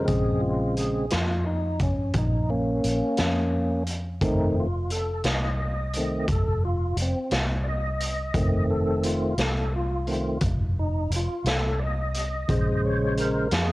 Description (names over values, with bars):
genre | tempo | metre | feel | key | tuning
slow blues | 58 BPM (dotted quarters) | 12/8 | straight | Bb minor | A4 = 439 Hz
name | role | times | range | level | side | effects
tonewheel organ | sustained chords | 0.0-13.7 s | Db3 to Eb5 | -27 LUFS | equal | slow rotary speaker, overdrive, chorus vibrato, cassette tape
vintage muted fingered electric bass | bass | 0.0-13.7 s | F1 to F2 | -27 LUFS | equal | none
raw garage drum kit | drums | 0.1-13.7 s | hi-hat, kick drum, snare drum | -28 LUFS | equal | none
room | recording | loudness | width
light reverb | home recording on cassette | -23 LUFS | side -19 dB against mid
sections
0.0-13.7 A section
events
tonewheel organ solo 0.0-13.7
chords
0.0 Bbm7; 4.2 F7; 12.5 Bbm7